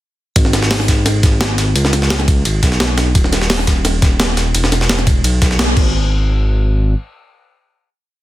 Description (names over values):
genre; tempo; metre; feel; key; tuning
liquid drum and bass; 172 BPM; 4/4; straight; unclear; A4 = 440 Hz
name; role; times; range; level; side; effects
smooth synth bass; bass; 0.4-6.9 s; D#1 to C#2; -16 LUFS; equal; none
breakbeat sampler-style drum kit; drums; 0.4-5.8 s; crash cymbal, hi-hat, snare drum; -18 LUFS; equal; none
breakbeat sampler-style drum kit; drums; 0.4-5.7 s; hi-hat, ride cymbal, snare drum; -20 LUFS; right 1 dB; overdrive, high-pass filter on cymbals, high-pass filter on snare, high-pass filter on hats, high-pass filter on room
electronic kick drum; drums; 0.4-5.8 s; none; -14 LUFS; equal; none
room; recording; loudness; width
little or no reverb; dense, heavily limited modern master; -12 LUFS; side -15 dB against mid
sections
0.4-5.9 drop; 5.9-8.2 final hit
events
drop 0.4-5.9; band accent 5.6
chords
none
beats
| 0.36 0.71 1.06 1.41 | 1.75 2.10 2.45 2.80 | 3.15 3.50 3.85 4.20 | 4.55 4.89 5.24 5.59 | 5.94 6.29 6.64